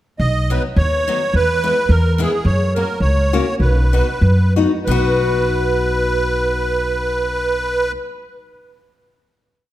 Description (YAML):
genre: alpine folk, alpine dance band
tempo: 86-107 BPM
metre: 2/4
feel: swing 54% on 8ths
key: B major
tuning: A4 = 439 Hz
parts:
  - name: musette accordion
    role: melody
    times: 0.2-7.9 s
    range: G#4 to D#5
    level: -19 LUFS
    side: right 2 dB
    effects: none
  - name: upright bass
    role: bass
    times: 0.2-7.9 s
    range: B1 to F#2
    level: -17 LUFS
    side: equal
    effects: none
  - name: picked old ladder-braced acoustic guitar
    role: accompaniment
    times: 0.5-8.0 s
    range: F#3 to F#4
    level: -22 LUFS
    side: left 5 dB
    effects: none
room: moderate recital hall reverb, RT60 1.7 s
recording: none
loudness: -15 LUFS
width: side -14 dB against mid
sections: 0.2-4.9 A section; 4.9-7.6 final chord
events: slowing down 2.4-4.9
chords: 0.2 B; 1.3 E; 2.4 F#; 3.6 B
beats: | 0.20 0.77 | 1.33 1.89 | 2.45 3.01 | 3.59 4.21 | 4.88 5.57 | 6.26 6.95